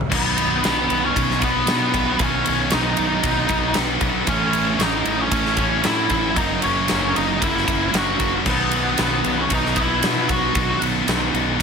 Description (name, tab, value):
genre	quiet-loud alternative rock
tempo	115 BPM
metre	4/4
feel	straight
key	B major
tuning	A4 = 440 Hz
part	scooped high-gain guitar	riff	0.0-11.6 s	F#2 to E4	-24 LUFS	left 14 dB	distortion
part	fuzz fingered electric bass	bass	0.0-11.6 s	F#1 to B2	-27 LUFS	equal	overdrive
part	octave-fuzz lead guitar	melody	0.1-10.8 s	B3 to F#5	-22 LUFS	left 1 dB	distortion, slapback echo
part	thick fuzz guitar	riff	0.1-11.6 s	A2 to B4	-25 LUFS	right 12 dB	distortion
part	huge arena drum kit	drums	0.1-11.6 s	crash cymbal, kick drum, ride cymbal, snare drum	-23 LUFS	equal	none
room	light reverb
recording	none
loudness	-17 LUFS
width	side -6 dB against mid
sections	0.1-11.6 A section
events	none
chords	0.1 Badd9; 4.3 A; 6.4 F#; 8.5 B